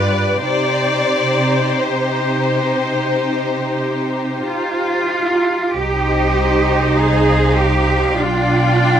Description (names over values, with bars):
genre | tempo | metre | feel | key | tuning
classical, slow romantic movement for string orchestra | 44-51 BPM | 4/4 | rubato | C minor | A4 = 440 Hz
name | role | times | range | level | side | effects
rich studio violin section | melody | 0.0-9.0 s | C5 to G5 | -22 LUFS | left 3 dB | none
rich symphonic violin section | second line | 0.0-9.0 s | Eb4 to D5 | -23 LUFS | left 1 dB | none
bright symphonic viola section | accompaniment | 0.0-9.0 s | D4 to C5 | -21 LUFS | left 1 dB | none
rich symphonic cello section | bass | 0.0-9.0 s | G2 to Ab4 | -18 LUFS | right 2 dB | none
rich symphonic double bass section | bass | 5.8-9.0 s | B1 to C2 | -18 LUFS | right 2 dB | none
room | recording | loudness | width
moderate recital hall reverb, RT60 1.3 s | close, detailed microphones | -14 LUFS | side -9 dB against mid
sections
0.0-5.8 A section; 5.8-9.0 A section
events
none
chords
0.4 Cm; 8.2 G7/B